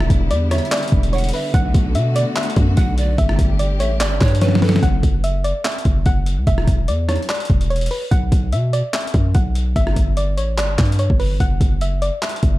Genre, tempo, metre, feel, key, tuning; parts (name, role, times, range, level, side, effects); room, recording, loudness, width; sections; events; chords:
hip hop, trap; 146 BPM; 4/4; half-time; F# phrygian; A4 = 439 Hz
soft round pluck; melody; 0.0-12.6 s; B4 to F#5; -25 LUFS; equal; chorus, low-pass filter
clear studio string section; sustained chords; 0.0-4.8 s; D3 to G4; -26 LUFS; left 2 dB
hard-hitting 808-style bass; bass; 0.0-12.6 s; E1 to B2; -18 LUFS; equal
boom bap sampler-style drum kit; drums; 0.0-12.5 s; handclaps, hi-hat, kick drum, rim click, snare drum; -18 LUFS; equal; overdrive
breathy mellow pan flute; second line; 0.5-4.8 s; A4 to F#5; -29 LUFS; right 5 dB; ping-pong delay
little or no reverb; dark, warm production; -15 LUFS; side -17 dB against mid
0.0-4.8 A section; 4.8-12.6 B section
drum fill 4.4-4.8
0.0 Em7; 1.5 Bm7; 3.2 Gsus2; 4.8 F#5; 6.5 Bmadd11/E; 8.1 B5; 9.8 Gsus2; 11.4 F#5